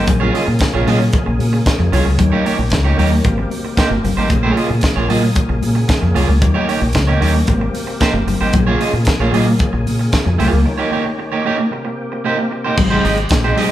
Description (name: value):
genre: disco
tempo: 113 BPM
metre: 4/4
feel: straight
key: Bb dorian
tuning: A4 = 440 Hz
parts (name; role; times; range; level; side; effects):
- electric guitar at the edge of break-up; accompaniment; 0.0-13.7 s; Ab3 to Eb5; -18 LUFS; right 3 dB; none
- percussive tonewheel organ; sustained chords; 0.0-13.7 s; C3 to Ab4; -25 LUFS; left 1 dB; overdrive, chorus vibrato, slow rotary speaker
- fingered electric bass; bass; 0.0-13.5 s; G1 to Bb2; -17 LUFS; equal; none
- tight funk drum kit; drums; 0.1-13.7 s; crash cymbal, hi-hat, kick drum, snare drum; -19 LUFS; equal; none
- congas; percussion; 0.1-13.7 s; none; -23 LUFS; left 4 dB; none
room: moderate large studio reverb, RT60 1.3 s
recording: band playing live in one room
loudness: -13 LUFS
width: side -13 dB against mid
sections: 0.0-12.8 A section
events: break 10.7-12.8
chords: 0.1 Bbm7; 2.2 Eb7; 3.2 Abmaj9; 4.3 Bbm7; 6.4 Eb7; 7.5 Abmaj9; 8.5 Bbm7; 10.7 Eb7; 11.7 Cm7; 12.8 Abmaj7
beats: | 0.07 0.60 1.13 1.66 | 2.19 2.71 3.24 3.77 | 4.30 4.83 5.36 5.89 | 6.42 6.95 7.48 8.01 | 8.54 9.07 9.60 10.13 | 10.66 11.19 11.72 12.25 | 12.78 13.31